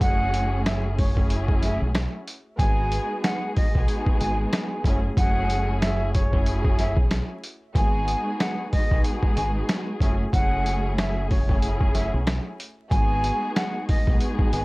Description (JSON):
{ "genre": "hip hop, boom-bap hip-hop", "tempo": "93 BPM", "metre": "4/4", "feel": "swing 59% on 16ths", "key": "F# dorian", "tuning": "A4 = 439 Hz", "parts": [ { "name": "breathy jazz flute", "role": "melody", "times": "0.0-14.6 s", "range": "C#5 to G#5", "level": "-29 LUFS", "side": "equal", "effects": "high-pass filter, low-pass filter, analog delay" }, { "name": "warm studio string section", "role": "accompaniment", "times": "0.0-14.6 s", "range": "G#3 to G#4", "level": "-29 LUFS", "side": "equal", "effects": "cassette tape, high-pass filter, low-pass filter" }, { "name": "deep dub fingered electric bass", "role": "bass", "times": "0.0-14.6 s", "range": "F#1 to B1", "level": "-26 LUFS", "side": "equal", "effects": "none" }, { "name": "boom bap sampler-style drum kit", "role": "drums", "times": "0.0-14.6 s", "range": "hi-hat, kick drum, snare drum", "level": "-23 LUFS", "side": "equal", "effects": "vintage 12-bit sampler grit" } ], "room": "little or no reverb", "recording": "dry, gritty hardware recording, vinyl crackle", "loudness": "-21 LUFS", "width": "side -23 dB against mid", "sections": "0.0-14.6 A section", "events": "none", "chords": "0.0 F#m9; 2.6 G#m7; 4.8 F#m9; 7.8 G#m7; 10.0 F#m9; 12.9 G#m7" }